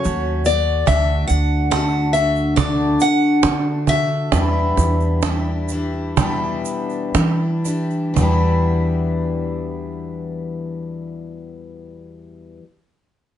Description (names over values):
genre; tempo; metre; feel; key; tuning
acoustic folk duo or small band; 58-72 BPM; 4/4; straight; E minor; A4 = 441 Hz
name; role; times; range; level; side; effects
picked steel-string acoustic guitar; melody; 0.0-7.1 s; C#5 to F#5; -21 LUFS; left 2 dB; none
picked twelve-string acoustic guitar; accompaniment; 0.0-12.7 s; E2 to F#4; -22 LUFS; left 2 dB; none
egg shaker; percussion; 0.0-8.6 s; none; -35 LUFS; right 10 dB; none
upright bass; bass; 0.1-12.6 s; D2 to E3; -21 LUFS; right 1 dB; none
cajon; percussion; 0.9-8.6 s; none; -22 LUFS; right 6 dB; none
room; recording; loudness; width
moderate studio reverb, RT60 0.6 s; nothing above 10.7 kHz; -17 LUFS; side -10 dB against mid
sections
0.0-8.2 A section; 8.2-12.3 B section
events
slowing down 0.9-8.2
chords
0.0 F#m; 0.9 D; 4.3 Em7